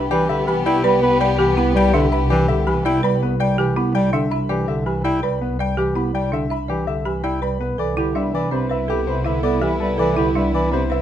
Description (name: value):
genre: classical, minimalist pattern music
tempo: 164 BPM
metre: 6/4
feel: straight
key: unclear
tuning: A4 = 439 Hz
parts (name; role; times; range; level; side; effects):
- bright concert grand piano; melody; 0.0-11.0 s; G4 to B5; -25 LUFS; left 8 dB; none
- mellow soprano saxophone; second line; 0.0-3.2, 7.8-11.0 s; B4; -25 LUFS; right 1 dB; none
- warm chamber violin section; sustained chords; 0.0-3.2, 7.8-11.0 s; B3 to G4; -25 LUFS; left 4 dB; none
- folk marimba with hard mallets; arpeggios; 0.0-11.0 s; C4 to E5; -24 LUFS; right 5 dB; none
- warm chamber double bass section; bass; 0.0-11.0 s; C2; -23 LUFS; right 1 dB; none
- warm bass clarinet; accompaniment; 0.1-10.9 s; C3 to E4; -22 LUFS; equal; none
room: little or no reverb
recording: close, detailed microphones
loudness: -17 LUFS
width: side -10 dB against mid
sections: 0.0-11.0 A section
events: none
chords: 0.0 G/C; 7.8 Cmaj9